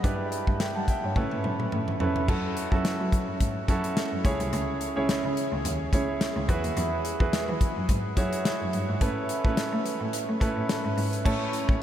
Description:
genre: 1980s-style pop.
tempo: 107 BPM.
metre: 4/4.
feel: swing 55% on 16ths.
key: unclear.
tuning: A4 = 440 Hz.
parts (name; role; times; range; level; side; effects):
clear grand piano; accompaniment; 0.0-11.8 s; A3 to A5; -29 LUFS; right 2 dB; none.
warm cello; bass; 0.0-11.8 s; C2 to A3; -31 LUFS; equal; none.
modern studio drum kit; drums; 0.0-11.8 s; crash cymbal, hi-hat, kick drum, snare drum, toms; -28 LUFS; equal; none.
room: moderate huge ambient reverb, RT60 7.3 s.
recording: dreamy mix soaked in reverb.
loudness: -24 LUFS.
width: side -11 dB against mid.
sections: 0.0-2.3 A section; 2.3-11.3 B section.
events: drum fill 1.2-2.3.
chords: 0.0 G6; 1.2 Aadd9; 2.3 F#m7; 4.2 C#m; 6.5 Eadd9; 9.0 Aadd9; 11.3 A.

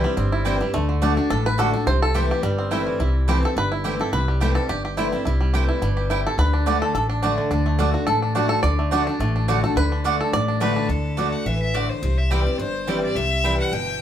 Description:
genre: bluegrass.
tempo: 212 BPM.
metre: 4/4.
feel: swing 54% on 8ths.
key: unclear.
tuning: A4 = 440 Hz.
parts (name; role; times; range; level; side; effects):
bluegrass banjo; melody; 0.0-10.9 s; D3 to D5; -25 LUFS; right 1 dB; plate reverb.
picked steel-string acoustic guitar; accompaniment; 0.0-14.0 s; G2 to F#4; -25 LUFS; left 2 dB; none.
upright bass; bass; 0.0-14.0 s; G1 to D2; -23 LUFS; equal; none.
mandolin; stabs; 0.4-13.5 s; A3 to G5; -26 LUFS; right 5 dB; none.
clear fiddle; melody; 10.6-14.0 s; A4 to G5; -26 LUFS; left 3 dB; plate reverb.
room: wet studio ambience, RT60 0.4 s.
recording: heard from further back in the room.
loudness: -19 LUFS.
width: side -10 dB against mid.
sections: 0.0-1.9 A section; 1.9-10.9 A section; 10.9-14.0 B section.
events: five-string banjo solo 0.0-10.9.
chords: 0.0 C; 0.7 D; 1.9 C6; 6.4 D; 12.0 C.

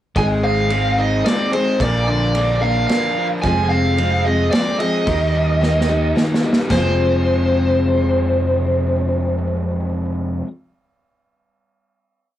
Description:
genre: folk rock and heartland rock.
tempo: 110 BPM.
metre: 3/4.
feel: straight.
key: F dorian.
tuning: A4 = 443 Hz.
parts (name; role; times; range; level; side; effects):
smooth overdriven lead guitar; melody; 0.2-10.4 s; C5 to Ab5; -20 LUFS; right 1 dB; cassette tape.
picked steel-string acoustic guitar; accompaniment; 0.2-10.6 s; F2 to Bb4; -22 LUFS; left 2 dB; cassette tape.
overdriven electric guitar; riff; 0.2-10.5 s; F2 to Ab4; -25 LUFS; equal; cassette tape.
fingered electric bass; bass; 0.2-10.4 s; F1 to Eb2; -20 LUFS; equal; none.
unplugged drum kit; drums; 0.2-6.8 s; kick drum, ride cymbal, snare drum, splash cymbal; -23 LUFS; right 1 dB; none.
room: light reverb.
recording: home recording on cassette.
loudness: -15 LUFS.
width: side -12 dB against mid.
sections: 0.2-6.7 pre-chorus; 6.7-10.0 final chord.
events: drum fill 5.6-6.7.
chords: 0.2 Ab; 1.8 Bb; 3.4 Fm; 5.1 Eb; 6.7 Fm.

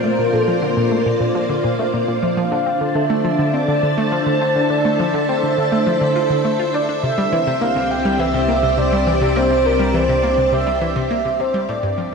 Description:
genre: ambient, sequencer-driven space music.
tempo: 103 BPM.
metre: 4/4.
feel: straight.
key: unclear.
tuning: A4 = 440 Hz.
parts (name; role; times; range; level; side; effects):
mellow horn-like synth lead; melody; 0.0-12.1 s; A4 to G5; -20 LUFS; equal; wide subtle chorus, ping-pong delay.
string machine, full ensemble; sustained chords; 0.0-12.1 s; G3 to A5; -20 LUFS; equal; ensemble chorus.
analog pluck; riff; 0.0-12.1 s; G2 to F4; -22 LUFS; equal; chorus, ping-pong delay.
pulsing gated texture; texture; 0.0-12.1 s; C5; -28 LUFS; right 1 dB; chorus, built-in reverb.
analog drone; bass; 7.8-12.1 s; G1 to C2; -25 LUFS; equal; chorus, tube saturation.
room: wet concert hall reverb, RT60 2.1 s.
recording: cassette tape.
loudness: -15 LUFS.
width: side -5 dB against mid.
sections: 0.0-12.1 A section.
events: fade-out 10.1-12.1.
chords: 0.0 Bb; 2.4 Dm7; 7.0 C.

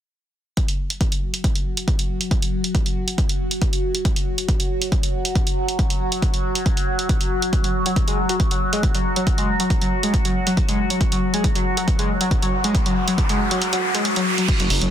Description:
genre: driving peak-time techno.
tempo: 138 BPM.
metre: 4/4.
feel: straight.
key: unclear.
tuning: A4 = 440 Hz.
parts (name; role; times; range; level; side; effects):
overtone-sweeping drone; drone; 1.2-14.9 s; F#3 to F#4; -25 LUFS; left 1 dB; chorus, built-in reverb, phaser, sidechain pumping.
electronic kick drum; drums; 0.6-14.6 s; none; -21 LUFS; equal; none.
punchy analog drum machine; drums; 0.6-14.9 s; crash cymbal, hi-hat; -26 LUFS; right 2 dB; none.
overdriven synth lead; riff; 7.6-14.9 s; F#3 to G#3; -24 LUFS; equal; distortion, tube saturation, analog chorus, sidechain pumping, digital delay.
riser; sound effects; 12.1-14.5 s; none; -26 LUFS; equal; none.
gritty driven synth bass; bass; 14.6-14.9 s; F#1; -22 LUFS; equal; sidechain pumping.
room: light reverb.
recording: dense, heavily limited modern master.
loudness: -18 LUFS.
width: side -10 dB against mid.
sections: 0.6-14.5 A section.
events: riser 12.1-14.5; kick drops out 13.6-14.5.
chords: none.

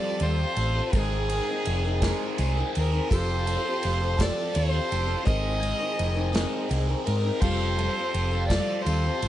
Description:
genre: folk rock and heartland rock.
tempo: 56 BPM (dotted quarters).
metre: 6/8.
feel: straight.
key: unclear.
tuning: A4 = 440 Hz.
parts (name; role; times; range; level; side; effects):
rich fiddle; melody; 0.0-9.3 s; Ab4 to Eb5; -30 LUFS; equal; none.
dark grand piano; accompaniment; 0.0-9.3 s; C4 to F5; -38 LUFS; right 2 dB; none.
picked steel-string acoustic guitar; accompaniment; 0.0-9.3 s; F3 to Bb4; -33 LUFS; left 6 dB; none.
tonewheel organ; sustained chords; 0.0-9.3 s; G4 to Bb5; -40 LUFS; right 1 dB; chorus vibrato, fast rotary speaker.
biting overdriven guitar; riff; 0.0-9.3 s; Ab2 to A4; -33 LUFS; right 1 dB; phaser.
hollow-body short-scale fingered electric bass; bass; 0.2-9.3 s; F1 to Ab2; -26 LUFS; equal; none.
unplugged drum kit; drums; 0.2-9.3 s; crash cymbal, kick drum, ride cymbal, snare drum; -31 LUFS; equal; none.
room: light reverb.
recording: dark, warm production, nothing above 10.7 kHz.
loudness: -23 LUFS.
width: side -12 dB against mid.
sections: 0.0-9.3 A section.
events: none.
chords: 0.0 Fadd9; 0.9 Abadd9; 3.1 Fadd9; 5.3 Abadd9; 7.4 Fadd9.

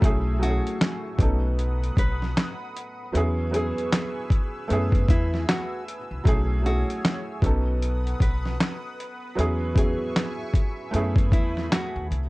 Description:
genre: lo-fi hip hop.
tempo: 77 BPM.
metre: 4/4.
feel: swing 61% on 16ths.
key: unclear.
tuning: A4 = 442 Hz.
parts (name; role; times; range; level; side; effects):
felt-muted upright piano; accompaniment; 0.0-12.3 s; F#3 to A4; -30 LUFS; right 2 dB; cassette tape.
lush unison pad; sustained chords; 0.0-12.3 s; A3 to E6; -38 LUFS; left 1 dB; chorus, phaser.
upright bass; bass; 0.0-12.3 s; B1 to F#2; -26 LUFS; equal; none.
dusty soul sampler-style drum kit; drums; 0.0-12.3 s; handclaps, hi-hat, kick drum, snare drum; -22 LUFS; equal; overdrive, vintage 12-bit sampler grit.
nylon-string guitar; melody; 0.4-12.1 s; E4 to B4; -33 LUFS; left 1 dB; analog delay.
room: little or no reverb.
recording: cassette tape.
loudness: -22 LUFS.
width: side -22 dB against mid.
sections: 0.0-12.3 A section.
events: none.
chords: 0.0 B13sus4; 1.2 B7; 3.1 E6; 4.7 F#m11; 6.3 B13sus4; 7.4 B7; 9.4 E6; 10.9 F#m11.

